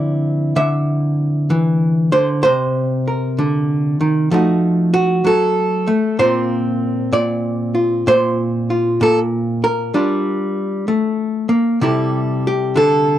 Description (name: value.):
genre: solo jazz.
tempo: 64 BPM.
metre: 4/4.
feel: swing 66% on 8ths.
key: unclear.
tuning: A4 = 439 Hz.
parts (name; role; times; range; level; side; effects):
archtop guitar, miked and amplified; solo; 0.0-13.2 s; Bb2 to E5; -14 LUFS; equal; none.
room: light reverb.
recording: dry, close 1970s-style studio recording.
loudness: -15 LUFS.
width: side -12 dB against mid.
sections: 0.0-13.2 A section.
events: none.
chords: 0.0 Dm9; 2.4 Cm9; 4.3 F7b9; 6.2 Bbadd9; 9.9 Gm9; 11.8 C69.